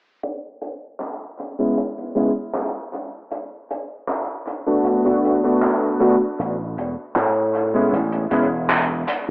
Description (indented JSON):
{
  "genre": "vaporwave",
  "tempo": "78 BPM",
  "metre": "4/4",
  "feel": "straight",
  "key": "A major",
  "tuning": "A4 = 441 Hz",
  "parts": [
    { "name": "crunchy breakbeat drum kit", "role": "drums", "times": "0.2-9.2 s", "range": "handclaps, hi-hat", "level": "-25 LUFS", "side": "equal", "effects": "vintage 12-bit sampler grit, analog delay" },
    { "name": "clear electric grand piano", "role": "accompaniment", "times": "1.6-8.5 s", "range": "G#3 to F#4", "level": "-19 LUFS", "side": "equal", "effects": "analog chorus, analog delay" },
    { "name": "slap bass with an envelope filter", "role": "bass", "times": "6.4-9.3 s", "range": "E1 to A2", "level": "-22 LUFS", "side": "equal", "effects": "tube saturation" }
  ],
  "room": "moderate spring reverb, RT60 2.5 s",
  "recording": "echo-heavy mix, cassette tape, low-pass filter, AM radio sound",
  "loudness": "-18 LUFS",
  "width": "side -26 dB against mid",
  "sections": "0.2-9.3 A section",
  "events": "filter sweep 0.2-9.3",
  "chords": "0.2 G#madd11; 2.9 Bm7/A; 6.4 Amaj7",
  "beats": "| 0.24 1.01 1.78 2.55 | 3.32 4.09 4.86 5.62 | 6.39 7.16 7.93 8.70"
}